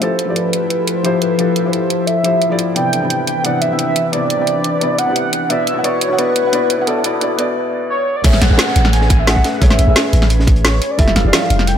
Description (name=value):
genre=liquid drum and bass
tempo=175 BPM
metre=4/4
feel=straight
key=unclear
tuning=A4 = 441 Hz
part: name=warm velvety synth lead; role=melody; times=0.0-11.8 s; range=A4 to G#5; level=-18 LUFS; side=equal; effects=chorus, cassette tape, ping-pong delay
part: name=felt-muted upright piano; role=accompaniment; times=0.0-11.8 s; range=B2 to G5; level=-20 LUFS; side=left 1 dB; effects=dub echo
part: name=airy breathy pad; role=sustained chords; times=0.0-11.8 s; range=E3 to C#5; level=-22 LUFS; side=left 2 dB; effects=chorus, sidechain pumping
part: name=drum and bass drum kit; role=drums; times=0.0-11.7 s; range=crash cymbal, hi-hat, snare drum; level=-18 LUFS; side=right 1 dB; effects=none
part: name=long sustained 808-style bass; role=bass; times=8.2-11.8 s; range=F1 to A1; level=-13 LUFS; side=equal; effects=tube saturation
part: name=crunchy breakbeat drum kit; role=drums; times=8.2-11.8 s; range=hi-hat, snare drum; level=-23 LUFS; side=equal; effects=high-pass filter on hats, high-pass filter on snare, high-pass filter on room
part: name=electronic kick drum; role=drums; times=8.2-11.1 s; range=none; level=-12 LUFS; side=equal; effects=none
part: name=downlifter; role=sound effects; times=8.2-11.0 s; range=none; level=-27 LUFS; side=equal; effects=none
room=moderate lush hall reverb, RT60 1.8 s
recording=high-pass filter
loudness=-12 LUFS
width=side -9 dB against mid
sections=0.0-8.2 A section; 8.2-11.8 B section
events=build-up 0.0-8.2; break 7.6-8.2; drop 8.2-11.8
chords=0.0 Fmaj9; 2.8 Cmaj9; 5.5 Dmaj9; 8.2 Amaj9; 11.0 Fmaj9